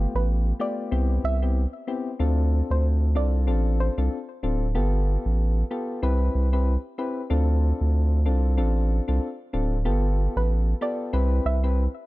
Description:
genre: afrobeats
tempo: 94 BPM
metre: 4/4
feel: swing 58% on 16ths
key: C major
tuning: A4 = 440 Hz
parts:
  - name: soft electric-piano-like synth keys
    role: accompaniment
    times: 0.0-11.8 s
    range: A3 to B4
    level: -29 LUFS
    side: left 3 dB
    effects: chorus
  - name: saturated sub bass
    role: bass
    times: 0.0-11.9 s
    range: D1 to D2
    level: -21 LUFS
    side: equal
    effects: none
  - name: soft round pluck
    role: melody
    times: 0.2-4.0, 10.4-11.6 s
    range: B4 to E5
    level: -32 LUFS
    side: right 2 dB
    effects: chorus, ping-pong delay
room: digital ambience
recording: none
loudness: -22 LUFS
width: side -19 dB against mid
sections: 0.0-12.1 A section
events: none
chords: 0.0 G9; 0.9 Cmaj7; 2.2 Dm7; 4.7 G9; 6.0 Cmaj7; 7.3 Dm7; 9.9 G9; 11.1 Cmaj7

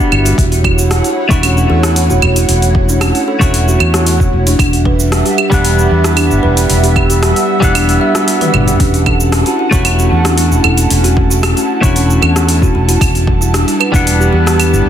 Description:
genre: organic downtempo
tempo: 114 BPM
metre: 4/4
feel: straight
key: unclear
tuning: A4 = 438 Hz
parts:
  - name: clean electric guitar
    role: accompaniment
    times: 0.0-14.9 s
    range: G3 to F#5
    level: -18 LUFS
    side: left 2 dB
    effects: sidechain pumping, tape echo
  - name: airy breathy pad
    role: sustained chords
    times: 0.0-14.9 s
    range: G3 to E6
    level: -18 LUFS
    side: equal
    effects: chorus, vintage 12-bit sampler grit, sidechain pumping
  - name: deep house drum kit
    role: drums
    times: 0.0-14.8 s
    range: cabasa, claves, hi-hat, rim click, toms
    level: -16 LUFS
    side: right 1 dB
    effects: overdrive
  - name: kalimba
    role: arpeggios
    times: 0.1-14.9 s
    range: C#4 to E5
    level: -17 LUFS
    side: right 2 dB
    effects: tape echo
  - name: fretless electric bass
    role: bass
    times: 0.1-14.9 s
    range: E1 to E2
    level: -13 LUFS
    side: equal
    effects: analog chorus
  - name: electronic kick drum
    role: drums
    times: 0.4-14.0 s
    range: none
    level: -14 LUFS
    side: equal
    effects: overdrive
room: light reverb, digital ambience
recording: dense, heavily limited modern master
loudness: -9 LUFS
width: side -10 dB against mid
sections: 0.0-14.9 A section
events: kick drops out 8.3-8.8; drum fill 8.4-8.8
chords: 0.4 Dmaj9/E (rootless); 4.6 Em9; 8.8 Dmaj9/E (rootless); 13.0 Em9

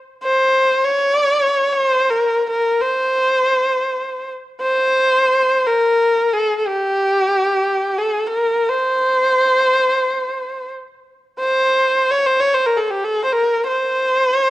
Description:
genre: Turkish makam ensemble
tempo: free time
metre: none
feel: none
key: C makam hicaz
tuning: A4 = 440 Hz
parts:
  - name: rich kamancheh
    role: solo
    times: 0.2-14.5 s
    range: G4 to Db5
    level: -15 LUFS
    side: equal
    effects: none
room: light reverb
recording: close, detailed microphones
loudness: -15 LUFS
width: side -16 dB against mid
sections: 0.0-14.5 A section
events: none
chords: none

